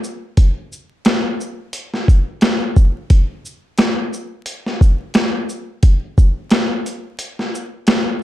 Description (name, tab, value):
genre	hip hop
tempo	88 BPM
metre	4/4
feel	swing 56% on 16ths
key	none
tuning	none
part	boom bap sampler-style drum kit	drums	0.0-8.1 s	hi-hat, kick drum, shaker, snare drum	-14 LUFS	equal	none
room	light reverb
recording	dark, warm production, vinyl crackle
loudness	-15 LUFS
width	side -14 dB against mid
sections	0.0-8.2 A section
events	break 7.2-8.2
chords	none